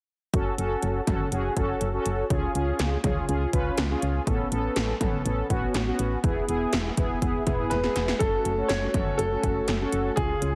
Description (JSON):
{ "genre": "synth-pop", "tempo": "122 BPM", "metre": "4/4", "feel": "straight", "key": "F# minor", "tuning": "A4 = 441 Hz", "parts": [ { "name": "mellow synth brass", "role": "accompaniment", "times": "0.3-10.5 s", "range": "B3 to B4", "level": "-31 LUFS", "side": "equal", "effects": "chorus, shimmer reverb" }, { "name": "solid FM bass", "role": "bass", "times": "0.3-10.6 s", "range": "E1 to C#2", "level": "-32 LUFS", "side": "equal", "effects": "none" }, { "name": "80s electronic pad drums", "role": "drums", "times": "0.3-10.5 s", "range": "hi-hat, kick drum, snare drum, toms", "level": "-31 LUFS", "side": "equal", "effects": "gated reverb on snare and toms" }, { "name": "warm baby grand piano", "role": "melody", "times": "7.7-10.6 s", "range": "G#4 to C#5", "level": "-30 LUFS", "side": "equal", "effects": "shimmer reverb" }, { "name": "brassy analog pad", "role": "sustained chords", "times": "8.2-10.6 s", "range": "A3 to C#4", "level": "-37 LUFS", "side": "equal", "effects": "chorus" } ], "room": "moderate lush hall reverb, RT60 1.6 s", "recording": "heavily compressed radio sound", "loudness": "-26 LUFS", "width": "mono", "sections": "0.3-8.2 A section; 8.2-10.6 B section", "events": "drum fill 7.7-8.2", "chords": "0.3 F#m; 2.3 C#; 4.3 Aadd9; 6.2 E; 8.2 F#m", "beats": "| 0.34 0.83 1.32 1.81 | 2.30 2.79 3.29 3.78 | 4.27 4.76 5.25 5.75 | 6.24 6.73 7.22 7.71 | 8.21 8.70 9.19 9.68 | 10.17" }